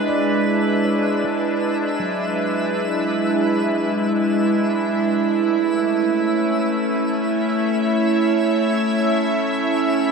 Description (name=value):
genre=ambient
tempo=free time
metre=none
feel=none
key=E mixolydian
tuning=A4 = 440 Hz
part: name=evolving wavetable pad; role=sustained chords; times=0.0-10.1 s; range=G#3 to E5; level=-18 LUFS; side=right 1 dB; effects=chorus, built-in reverb
part: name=handpan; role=arpeggios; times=0.0-4.2 s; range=F#3 to D5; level=-32 LUFS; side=equal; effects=diffuse ambient delay
part: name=twinkling granular texture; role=texture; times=0.0-10.1 s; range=E5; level=-31 LUFS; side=right 1 dB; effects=built-in reverb
room=wet lush hall reverb, RT60 3.2 s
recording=dreamy mix soaked in reverb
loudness=-17 LUFS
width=side -4 dB against mid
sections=0.0-10.1 A section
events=fade-in on handpan 0.0-10.1; fade-in on synth texture 0.0-10.1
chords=0.0 E7; 5.3 A